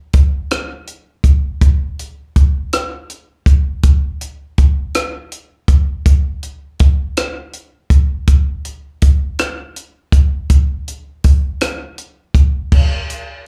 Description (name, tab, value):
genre	R&B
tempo	54 BPM (dotted quarters)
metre	6/8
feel	straight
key	none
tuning	none
part	compact cocktail drum kit	drums	0.1-13.3 s	crash cymbal, hi-hat, kick drum, rim click	-14 LUFS	equal	none
room	little or no reverb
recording	live gig heard through the venue's PA, club reverb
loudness	-15 LUFS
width	mono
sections	0.0-12.7 A section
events	none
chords	none